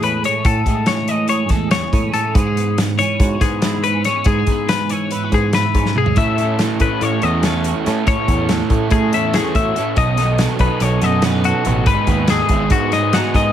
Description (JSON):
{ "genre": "math rock and midwest emo", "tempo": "284 BPM (eighths)", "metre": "9/8", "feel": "straight", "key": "A lydian", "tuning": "A4 = 439 Hz", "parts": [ { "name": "twelve-string electric guitar", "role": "accompaniment", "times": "0.0-13.5 s", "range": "E2 to A4", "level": "-22 LUFS", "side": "right 7 dB", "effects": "ensemble chorus" }, { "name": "twelve-string electric guitar", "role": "arpeggios", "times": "0.0-13.5 s", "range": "F#4 to E5", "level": "-20 LUFS", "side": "left 7 dB", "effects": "none" }, { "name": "picked electric bass", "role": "bass", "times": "0.0-13.5 s", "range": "G#1 to A2", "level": "-20 LUFS", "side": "equal", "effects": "none" }, { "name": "loose indie drum kit", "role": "drums", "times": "0.0-13.4 s", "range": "hi-hat, kick drum, snare drum, toms", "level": "-19 LUFS", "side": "equal", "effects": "none" }, { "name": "raw garage guitar", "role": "riff", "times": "6.2-13.5 s", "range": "G#2 to A4", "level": "-22 LUFS", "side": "right 2 dB", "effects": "overdrive" } ], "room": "light reverb", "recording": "none", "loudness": "-14 LUFS", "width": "side -10 dB against mid", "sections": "0.0-6.2 A section; 6.2-13.5 B section", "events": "drum fill 5.8-6.2", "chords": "0.0 Amaj7; 2.4 C#m7/G#; 6.2 A; 10.0 B9; 11.9 G#m7", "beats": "0.02 0.24 | 0.45 0.66 0.87 1.08 1.30 1.51 1.72 1.93 2.14 | 2.36 2.57 2.78 2.99 3.20 3.42 3.63 3.84 4.05 | 4.26 4.47 4.69 4.90 5.11 5.32 5.53 5.74 5.96 | 6.17 6.38 6.59 6.80 7.01 7.23 7.44 7.65 7.86 | 8.07 8.28 8.49 8.71 8.92 9.13 9.34 9.55 9.76 | 9.97 10.19 10.40 10.61 10.82 11.03 11.24 11.45 11.66 | 11.87 12.08 12.29 12.51 12.71 12.93 13.14 13.35" }